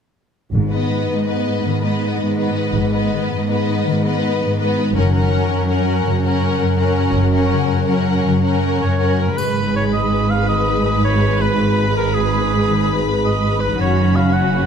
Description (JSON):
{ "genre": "cinematic, heroic adventure film score", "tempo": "109 BPM (dotted quarters)", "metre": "12/8", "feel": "straight", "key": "G# minor", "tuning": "A4 = 440 Hz", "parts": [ { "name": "concert harp", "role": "arpeggios", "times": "0.5-14.7 s", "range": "F#2 to E#5", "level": "-24 LUFS", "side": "left 9 dB", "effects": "none" }, { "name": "warm symphonic cello section", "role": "bass", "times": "0.5-14.7 s", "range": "F#2 to G#2", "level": "-20 LUFS", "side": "right 2 dB", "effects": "none" }, { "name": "warm symphonic double bass section", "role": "bass", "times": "0.5-14.7 s", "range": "F#1 to G#1", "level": "-21 LUFS", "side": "right 3 dB", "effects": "none" }, { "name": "timpani", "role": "percussion", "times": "0.5-1.1 s", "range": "G#2", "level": "-25 LUFS", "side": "left 2 dB", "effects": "none" }, { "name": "warm chamber violin section", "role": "melody", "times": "0.7-14.7 s", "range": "D#5 to B5", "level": "-28 LUFS", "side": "left 4 dB", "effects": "none" }, { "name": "warm symphonic violin section", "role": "second line", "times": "0.7-14.7 s", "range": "F#4 to B4", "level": "-24 LUFS", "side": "left 2 dB", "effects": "none" }, { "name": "warm symphonic viola section", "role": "accompaniment", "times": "0.7-14.7 s", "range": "G#3 to C#4", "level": "-24 LUFS", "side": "right 1 dB", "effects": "none" }, { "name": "warm oboe", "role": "second line", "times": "8.8-14.7 s", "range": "G#4 to F#5", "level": "-22 LUFS", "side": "right 3 dB", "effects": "none" }, { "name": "triangle", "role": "percussion", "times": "9.4-10.1 s", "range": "none", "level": "-39 LUFS", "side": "left 3 dB", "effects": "none" } ], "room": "light reverb", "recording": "close, detailed microphones", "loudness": "-15 LUFS", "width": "side -7 dB against mid", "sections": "0.5-9.4 A section; 9.4-14.7 B section", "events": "none", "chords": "0.5 G#m; 5.0 F#; 9.4 G#m; 13.8 F#" }